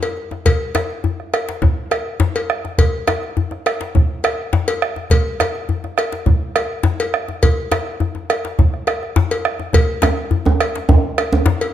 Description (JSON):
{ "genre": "west african traditional, West African drum ensemble", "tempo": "104 BPM", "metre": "4/4", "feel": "straight", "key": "none", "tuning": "none", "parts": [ { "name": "bombo", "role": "percussion", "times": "0.0-11.3 s", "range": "none", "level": "-18 LUFS", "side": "right 3 dB", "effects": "none" }, { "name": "cowbell", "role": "percussion", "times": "0.0-11.7 s", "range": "none", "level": "-22 LUFS", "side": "left 3 dB", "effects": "none" }, { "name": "djembe", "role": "percussion", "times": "0.0-11.6 s", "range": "none", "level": "-19 LUFS", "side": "left 4 dB", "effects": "none" }, { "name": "djembe", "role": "percussion", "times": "10.0-11.5 s", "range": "none", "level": "-17 LUFS", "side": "right 3 dB", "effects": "none" } ], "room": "moderate recital hall reverb, RT60 1.4 s", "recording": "close, detailed microphones", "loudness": "-16 LUFS", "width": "side -11 dB against mid", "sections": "0.0-9.7 A section; 9.7-11.7 B section", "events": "none", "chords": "none" }